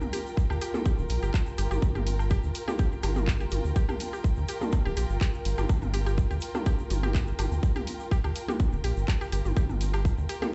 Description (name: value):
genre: minimal techno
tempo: 124 BPM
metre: 4/4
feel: swing 53% on 16ths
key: G minor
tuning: A4 = 442 Hz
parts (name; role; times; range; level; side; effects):
- egg shaker; percussion; 0.0-10.5 s; none; -53 LUFS; equal; none
- electronic toms and woodblock; percussion; 0.0-10.5 s; none; -39 LUFS; equal; overdrive, digital delay
- dark studio string section; texture; 0.0-10.5 s; F4 to G5; -40 LUFS; equal; sidechain pumping
- mallet-like synth pluck; riff; 0.1-10.5 s; G4; -41 LUFS; equal; chorus, sidechain pumping, dub echo
- garage drum kit; drums; 0.1-10.4 s; handclaps, hi-hat; -40 LUFS; equal; none
- electronic kick drum; drums; 0.4-10.2 s; none; -28 LUFS; equal; none
- round analog bass; bass; 0.5-10.3 s; D1 to D2; -30 LUFS; equal; sidechain pumping
- wavetable chord stab; stabs; 0.7-10.5 s; Bb3 to A4; -39 LUFS; equal; digital delay
room: little or no reverb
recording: played on a big sound system in a bare room, large studio reverb, nothing above 8.0 kHz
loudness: -28 LUFS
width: mono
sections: 0.0-10.5 A section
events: none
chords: 0.0 Gm7